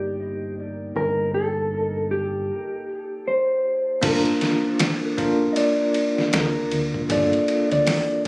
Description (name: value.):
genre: trip hop.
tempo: 78 BPM.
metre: 4/4.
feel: swing 60% on 16ths.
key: G minor.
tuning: A4 = 440 Hz.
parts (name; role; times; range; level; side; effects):
mellow electric guitar; melody; 0.0-8.3 s; G4 to Eb5; -24 LUFS; equal; dub echo.
bell-like tine electric piano; accompaniment; 0.0-8.3 s; Bb3 to Bb4; -24 LUFS; equal; tremolo, tape echo.
deep dub fingered electric bass; bass; 0.0-8.3 s; G1 to D2; -29 LUFS; equal; none.
trip hop sampler-style drum kit; drums; 4.0-8.3 s; crash cymbal, hi-hat, kick drum, ride cymbal, snare drum; -25 LUFS; equal; none.
room: light reverb.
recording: recorded on a phone in the room, club reverb, compression.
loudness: -20 LUFS.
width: side -26 dB against mid.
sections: 0.0-4.0 A section; 4.0-8.3 B section.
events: none.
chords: 0.0 Eb/G; 4.0 Gm7 (rootless).